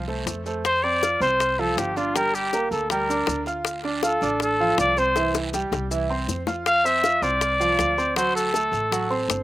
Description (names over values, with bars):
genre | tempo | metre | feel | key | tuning
latin, Cuban son and guajira | 160 BPM | 4/4 | straight | F major | A4 = 437 Hz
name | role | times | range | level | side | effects
upright bass | bass | 0.0-9.4 s | G1 to F2 | -32 LUFS | equal | none
bright grand piano | arpeggios | 0.1-9.4 s | E3 to F6 | -26 LUFS | right 2 dB | slapback echo
bongos | percussion | 0.1-9.4 s | none | -28 LUFS | left 8 dB | none
guiro | percussion | 0.3-9.4 s | none | -38 LUFS | right 4 dB | none
maracas | percussion | 0.3-9.4 s | none | -34 LUFS | left 5 dB | none
breathy trumpet | melody | 0.7-9.4 s | F4 to F5 | -21 LUFS | left 1 dB | none
room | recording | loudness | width
little or no reverb | recorded outdoors, with no room sound | -20 LUFS | side -16 dB against mid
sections
0.6-9.4 A section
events
drum fill 5.2-6.7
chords
0.0 F; 0.6 F5; 2.2 Gm; 3.7 Dm; 5.2 C; 6.7 F5; 8.2 D7